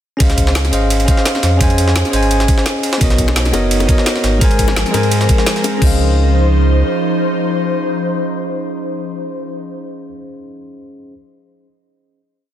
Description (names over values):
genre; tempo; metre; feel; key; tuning
liquid drum and bass; 171 BPM; 4/4; swing 54% on 16ths; Db major; A4 = 439 Hz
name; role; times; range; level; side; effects
bell-like tine electric piano; accompaniment; 0.2-11.1 s; Ab3 to Ab5; -19 LUFS; equal; ping-pong delay
sub bass with octave; bass; 0.2-6.8 s; Gb1 to Ab2; -15 LUFS; equal; none
drum and bass drum kit; drums; 0.2-5.9 s; crash cymbal, hi-hat, snare drum; -22 LUFS; equal; overdrive, studio reverb
electronic kick drum; drums; 0.2-5.9 s; none; -14 LUFS; equal; overdrive, studio reverb
jungle sampler-style drum kit; drums; 0.2-5.7 s; ride cymbal, snare drum; -22 LUFS; right 2 dB; high-pass filter on cymbals, studio reverb, high-pass filter on snare
airy breathy pad; sustained chords; 3.0-9.4 s; F3 to C5; -20 LUFS; left 1 dB; chorus
bongos; percussion; 3.3-5.7 s; none; -26 LUFS; left 8 dB; none
room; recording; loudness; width
light reverb; dense, heavily limited modern master; -12 LUFS; side -11 dB against mid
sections
0.2-5.8 drop; 5.8-8.6 final chord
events
drop 0.2-5.8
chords
0.2 Dbmaj9; 3.0 Cbmaj7; 4.4 Ab69; 5.8 Dbmaj9